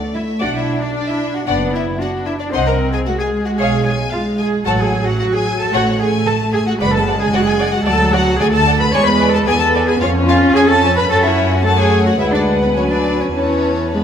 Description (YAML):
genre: quick classical-period movement for string orchestra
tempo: 112 BPM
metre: 4/4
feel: rubato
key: F# minor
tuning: A4 = 440 Hz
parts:
  - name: warm chamber violin section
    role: melody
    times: 0.0-14.0 s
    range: B4 to C#6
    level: -22 LUFS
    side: left 3 dB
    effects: none
  - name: dark chamber viola section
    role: accompaniment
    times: 0.0-14.0 s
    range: E3 to D4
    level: -18 LUFS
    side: equal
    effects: none
  - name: dark chamber cello section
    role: bass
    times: 0.1-14.0 s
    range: B3 to C#5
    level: -19 LUFS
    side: right 1 dB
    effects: none
  - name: warm chamber violin section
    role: second line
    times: 0.4-14.0 s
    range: B4 to A5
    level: -22 LUFS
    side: left 2 dB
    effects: none
  - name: clear chamber double bass section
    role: bass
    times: 0.4-14.0 s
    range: F#1 to F#2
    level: -20 LUFS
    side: right 2 dB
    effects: none
room: wet recital hall reverb, RT60 1.7 s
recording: none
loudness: -13 LUFS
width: side -8 dB against mid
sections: 0.0-14.0 A section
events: none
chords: 0.4 Bm; 2.5 G#7/B#; 3.6 C#7/B; 4.7 F#m/A; 6.8 D/F#; 7.9 D; 8.9 E7; 10.0 C#/E#; 11.1 F#m; 12.2 Bm/D; 13.3 Esus4